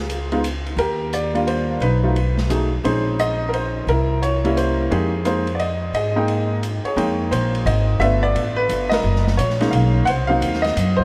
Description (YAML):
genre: jazz piano trio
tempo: 174 BPM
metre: 3/4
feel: swing 64% on 8ths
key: F minor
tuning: A4 = 443 Hz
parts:
  - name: clear upright piano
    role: melody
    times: 0.0-11.0 s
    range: F#3 to G5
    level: -22 LUFS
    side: equal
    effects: delay
  - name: upright bass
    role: bass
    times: 0.0-11.0 s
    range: Gb1 to Ab2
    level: -24 LUFS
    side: equal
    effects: none
  - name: open jazz drum kit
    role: drums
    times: 0.1-11.0 s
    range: hi-hat, kick drum, ride cymbal, snare drum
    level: -34 LUFS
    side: equal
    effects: none
room: light reverb, small room ambience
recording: none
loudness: -20 LUFS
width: mono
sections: 0.0-7.0 A section; 7.0-11.0 B section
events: band accent 8.9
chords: 0.0 Db; 0.8 Ebmaj9; 1.8 B7; 2.8 Bbm11; 3.9 C7b9; 4.9 Fm11; 8.0 G9; 9.0 Gb6; 10.1 Cm7b5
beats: 0.09 0.43 | 0.78 1.12 1.47 | 1.81 2.15 2.50 | 2.84 3.19 3.53 | 3.88 4.22 4.56 | 4.91 5.25 5.60 | 5.94 6.29 6.63 | 6.97 7.32 7.66 | 8.01 8.35 8.70 | 9.04 9.38 9.73 | 10.07 10.42 10.76